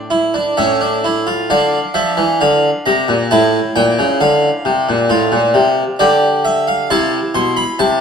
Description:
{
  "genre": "classical, baroque-style 3-part fugue for harpsichord",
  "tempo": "67 BPM",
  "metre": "3/4",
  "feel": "straight",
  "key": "D minor",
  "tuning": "A4 = 440 Hz",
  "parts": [
    { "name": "harpsichord", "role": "solo", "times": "0.0-8.0 s", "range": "A2 to C6", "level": "-12 LUFS", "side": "equal", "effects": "none" }
  ],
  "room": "wet stone room reverb, RT60 1.4 s",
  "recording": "none",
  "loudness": "-12 LUFS",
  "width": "side -6 dB against mid",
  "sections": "0.0-1.5 A section; 1.5-8.0 B section",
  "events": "none",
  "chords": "0.0 Asus4; 0.6 A; 1.5 Dm; 3.3 A7; 4.2 Dm; 6.9 Am"
}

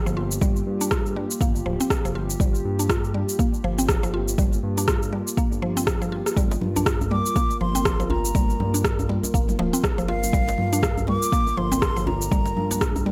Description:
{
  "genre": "afro house",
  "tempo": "121 BPM",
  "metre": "4/4",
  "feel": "swing 58% on 16ths",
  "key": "G minor",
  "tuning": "A4 = 440 Hz",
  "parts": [
    { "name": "dark analog pad", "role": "sustained chords", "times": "0.0-13.1 s", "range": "Bb3 to Bb4", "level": "-34 LUFS", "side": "equal", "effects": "chorus, phaser, sidechain pumping" },
    { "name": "mallet-like synth pluck", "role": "arpeggios", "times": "0.0-13.1 s", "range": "F3 to F4", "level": "-30 LUFS", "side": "equal", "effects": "chorus, phaser, sidechain pumping, dub echo" },
    { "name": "smooth synth bass", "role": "bass", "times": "0.1-13.1 s", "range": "D1 to G2", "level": "-30 LUFS", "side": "equal", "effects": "sidechain pumping" },
    { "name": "electronic cabasa and rim click", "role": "drums", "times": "0.1-13.0 s", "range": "none", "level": "-30 LUFS", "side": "equal", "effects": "overdrive" },
    { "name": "electronic kick drum", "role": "drums", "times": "0.4-12.9 s", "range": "none", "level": "-26 LUFS", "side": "equal", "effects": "none" },
    { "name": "congas", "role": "percussion", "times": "6.4-13.1 s", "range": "none", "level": "-35 LUFS", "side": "equal", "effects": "none" },
    { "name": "djembe", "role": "percussion", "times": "6.5-13.0 s", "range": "none", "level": "-35 LUFS", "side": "equal", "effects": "none" },
    { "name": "breathy concert flute", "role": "melody", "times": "7.1-13.1 s", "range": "F5 to D6", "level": "-30 LUFS", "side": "equal", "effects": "dub echo" }
  ],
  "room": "little or no reverb",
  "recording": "none",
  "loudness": "-23 LUFS",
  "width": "mono",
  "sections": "0.0-13.1 A section",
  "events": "none",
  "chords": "0.0 Gm7"
}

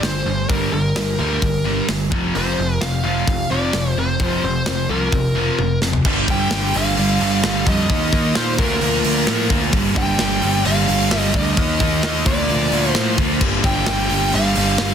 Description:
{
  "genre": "hard rock",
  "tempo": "130 BPM",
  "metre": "4/4",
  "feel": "straight",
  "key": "G minor",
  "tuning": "A4 = 441 Hz",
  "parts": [
    { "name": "bluesy overdriven lead guitar", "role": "melody", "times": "0.0-14.9 s", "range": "Bb4 to G5", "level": "-23 LUFS", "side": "equal", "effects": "distortion" },
    { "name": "overdriven electric guitar", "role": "riff", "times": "0.0-14.9 s", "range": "F2 to Eb4", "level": "-20 LUFS", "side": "right 1 dB", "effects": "none" },
    { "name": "growling picked electric bass", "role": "bass", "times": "0.0-14.9 s", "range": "F1 to Bb2", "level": "-23 LUFS", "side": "equal", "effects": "overdrive" },
    { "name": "tight metal drum kit", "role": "drums", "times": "0.0-14.9 s", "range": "crash cymbal, hi-hat, kick drum, snare drum, toms", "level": "-22 LUFS", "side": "equal", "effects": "none" }
  ],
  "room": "light reverb, small room ambience",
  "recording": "dense, heavily limited modern master",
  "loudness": "-16 LUFS",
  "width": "side -8 dB against mid",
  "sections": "0.0-6.0 A section; 6.0-14.9 B section",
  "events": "drum fill 5.6-6.0",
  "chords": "0.0 Gm; 2.1 Fsus4; 6.0 G5; 7.9 Eb5; 8.6 Bb/D; 9.7 G5; 11.6 Eb5; 12.3 Bb/D; 13.4 G5"
}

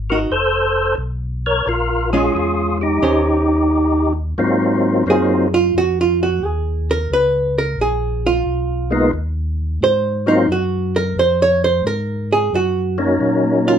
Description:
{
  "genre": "jazz",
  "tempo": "88 BPM",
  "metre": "4/4",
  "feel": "swing 68% on 8ths",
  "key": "Ab mixolydian",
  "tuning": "A4 = 440 Hz",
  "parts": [
    { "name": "mellow tonewheel organ", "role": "bass", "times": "0.0-13.8 s", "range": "F1 to Bb2", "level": "-22 LUFS", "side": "left 1 dB", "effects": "overdrive, chorus vibrato, slow rotary speaker" },
    { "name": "percussive tonewheel organ", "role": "melody", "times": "0.1-13.8 s", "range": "Gb3 to Db5", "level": "-16 LUFS", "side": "left 1 dB", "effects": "slow rotary speaker, overdrive, chorus vibrato" },
    { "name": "archtop guitar, miked and amplified", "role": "accompaniment", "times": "0.1-13.8 s", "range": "Eb3 to Db5", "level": "-17 LUFS", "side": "right 3 dB", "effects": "none" }
  ],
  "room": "wet studio ambience, RT60 0.5 s",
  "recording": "band playing live in one room",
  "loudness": "-15 LUFS",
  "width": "side -8 dB against mid",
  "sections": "0.0-4.4 A section; 4.4-13.8 B section",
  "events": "hollow-body jazz guitar solo 4.4-13.8",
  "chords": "0.3 F; 1.7 Bbm7; 3.0 Eb6; 4.4 Ab13; 7.1 Db13; 9.8 Ab13; 12.5 Ebm7"
}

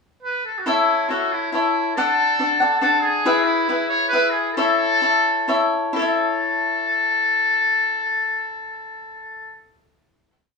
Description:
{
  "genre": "mexican folk, mariachi",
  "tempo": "123-141 BPM",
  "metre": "3/4",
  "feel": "straight",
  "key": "A major",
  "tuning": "A4 = 441 Hz",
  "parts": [
    { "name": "trumpet with metal mute", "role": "melody", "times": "0.2-9.6 s", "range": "E4 to C#5", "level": "-20 LUFS", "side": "left 2 dB", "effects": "none" },
    { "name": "cavaquinho", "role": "accompaniment", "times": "0.7-10.3 s", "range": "D4 to F#5", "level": "-20 LUFS", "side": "left 2 dB", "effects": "none" }
  ],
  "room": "wet studio reverb, RT60 0.9 s",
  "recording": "band playing live in one room",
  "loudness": "-17 LUFS",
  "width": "side -4 dB against mid",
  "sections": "0.0-0.7 pickup bar; 0.7-5.9 A section; 5.9-8.8 final chord",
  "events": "slowing down 3.2-5.9",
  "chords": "0.0 N.C.; 0.7 A; 2.0 D; 3.2 E; 4.6 A"
}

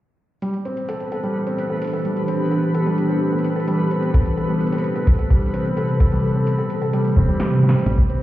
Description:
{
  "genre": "IDM",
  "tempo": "129 BPM",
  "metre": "4/4",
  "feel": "straight",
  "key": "A minor",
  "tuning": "A4 = 439 Hz",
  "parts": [
    { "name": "glassy FM pad", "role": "sustained chords", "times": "0.4-8.2 s", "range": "C3 to A4", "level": "-22 LUFS", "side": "equal", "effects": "ensemble chorus, built-in reverb, phaser" },
    { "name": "felt-muted upright piano", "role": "arpeggios", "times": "0.4-8.2 s", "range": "G3 to A4", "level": "-23 LUFS", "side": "equal", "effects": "low-pass filter, tape echo" },
    { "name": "electro analog drum machine", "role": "drums", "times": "0.4-8.2 s", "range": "hi-hat, snare drum, toms", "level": "-19 LUFS", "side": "right 1 dB", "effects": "none" },
    { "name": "twinkling granular texture", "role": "texture", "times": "1.0-7.9 s", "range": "B3 to B4", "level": "-30 LUFS", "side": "left 1 dB", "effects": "built-in reverb, sidechain pumping" },
    { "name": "electronic kick drum", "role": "drums", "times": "4.1-8.1 s", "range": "none", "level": "-16 LUFS", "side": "equal", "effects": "none" },
    { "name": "woody FM bass", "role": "bass", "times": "7.9-8.2 s", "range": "A1", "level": "-20 LUFS", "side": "equal", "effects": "tube saturation" }
  ],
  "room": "moderate lush hall reverb, RT60 1.6 s",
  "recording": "heard muffled through a wall, stone room reverb, EQ",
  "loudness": "-18 LUFS",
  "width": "side -14 dB against mid",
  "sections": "0.4-7.9 A section",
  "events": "filter sweep on felt piano 0.4-7.9; drum fill 7.2-7.9; kick drops out 7.4-7.9",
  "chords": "0.4 Am7"
}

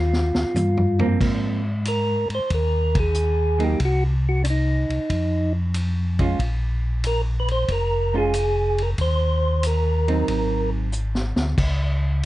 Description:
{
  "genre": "soul jazz organ trio",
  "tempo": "93 BPM",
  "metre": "4/4",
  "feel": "swing 69% on 8ths",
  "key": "Ab major",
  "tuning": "A4 = 442 Hz",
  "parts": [
    { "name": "percussive tonewheel organ", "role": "melody", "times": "0.0-10.7 s", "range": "D4 to C5", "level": "-24 LUFS", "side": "right 1 dB", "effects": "slow rotary speaker" },
    { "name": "mellow tonewheel organ", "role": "bass", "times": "0.0-12.3 s", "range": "F1 to Ab2", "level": "-22 LUFS", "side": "equal", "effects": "chorus vibrato, slow rotary speaker" },
    { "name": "vintage drum kit", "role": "drums", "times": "0.1-11.8 s", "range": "crash cymbal, hi-hat, kick drum, ride cymbal, snare drum, toms", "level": "-28 LUFS", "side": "equal", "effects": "none" },
    { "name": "vintage hollow-body jazz guitar", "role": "accompaniment", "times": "1.0-10.9 s", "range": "F3 to F4", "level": "-25 LUFS", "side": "right 5 dB", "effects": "none" }
  ],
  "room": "little or no reverb",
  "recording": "dark, warm production, nothing above 10.6 kHz",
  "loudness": "-19 LUFS",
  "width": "side -16 dB against mid",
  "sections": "0.0-1.2 A section; 1.2-12.3 B section",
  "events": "drum fill 0.0-1.2, 10.9-11.6; tonewheel organ solo 0.0-1.2; band accent 2.8-3.1",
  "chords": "0.0 Eb; 1.2 Ab69; 3.8 Cdim; 5.1 Fm; 6.4 Bb7(no3); 9.0 Ebm; 10.3 Ab7; 11.6 N.C."
}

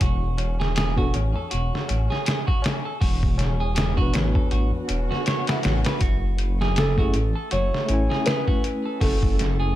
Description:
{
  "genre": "trip hop",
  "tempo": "80 BPM",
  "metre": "4/4",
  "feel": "swing 57% on 16ths",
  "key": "F# minor",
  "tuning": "A4 = 436 Hz",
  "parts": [
    { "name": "clean electric guitar", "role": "arpeggios", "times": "0.0-9.7 s", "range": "E4 to C#5", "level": "-31 LUFS", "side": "right 3 dB", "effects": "ping-pong delay" },
    { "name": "dark detuned saw bass", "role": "bass", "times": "0.0-9.8 s", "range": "E1 to A1", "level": "-23 LUFS", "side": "equal", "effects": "none" },
    { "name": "trip hop sampler-style drum kit", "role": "drums", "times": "0.0-9.6 s", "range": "hi-hat, kick drum, snare drum", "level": "-23 LUFS", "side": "equal", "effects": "none" },
    { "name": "tabla", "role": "percussion", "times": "0.0-6.0 s", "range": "none", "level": "-35 LUFS", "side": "left 4 dB", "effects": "none" },
    { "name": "bell-like tine electric piano", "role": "accompaniment", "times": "1.0-9.8 s", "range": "A3 to G#5", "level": "-30 LUFS", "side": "left 1 dB", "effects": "harmonic tremolo, tape echo" },
    { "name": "swell", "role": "sound effects", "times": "4.8-6.0 s", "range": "none", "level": "-33 LUFS", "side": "right 3 dB", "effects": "none" },
    { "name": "backwards swelling texture", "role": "texture", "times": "6.0-9.8 s", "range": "A3", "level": "-39 LUFS", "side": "right 4 dB", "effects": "none" },
    { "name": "felt-muted upright piano", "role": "melody", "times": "6.8-9.8 s", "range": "A4 to C#5", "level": "-28 LUFS", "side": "equal", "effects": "vintage 12-bit sampler grit, tape echo" }
  ],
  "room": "little or no reverb",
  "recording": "none",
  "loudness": "-20 LUFS",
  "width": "side -14 dB against mid",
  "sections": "0.0-6.0 A section; 6.0-9.8 B section",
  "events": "swell 4.8-6.0",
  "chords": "0.0 E7sus4; 6.0 F#m7"
}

